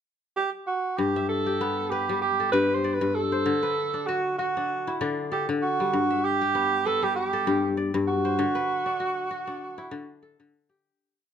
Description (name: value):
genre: west african traditional, West African string and xylophone music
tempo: 97 BPM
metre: 4/4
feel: swing 55% on 16ths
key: G major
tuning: A4 = 440 Hz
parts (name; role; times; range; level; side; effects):
- warm alto saxophone; melody; 0.4-10.2 s; F#4 to C5; -26 LUFS; right 4 dB; none
- kora; arpeggios; 1.0-11.3 s; G2 to E5; -27 LUFS; left 4 dB; none
room: light reverb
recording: close, detailed microphones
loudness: -23 LUFS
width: side -8 dB against mid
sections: 0.0-1.0 pickup bar; 1.0-10.8 A section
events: fade-out 8.4-10.8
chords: 0.0 N.C.; 1.0 G; 3.5 D; 5.9 G; 8.4 D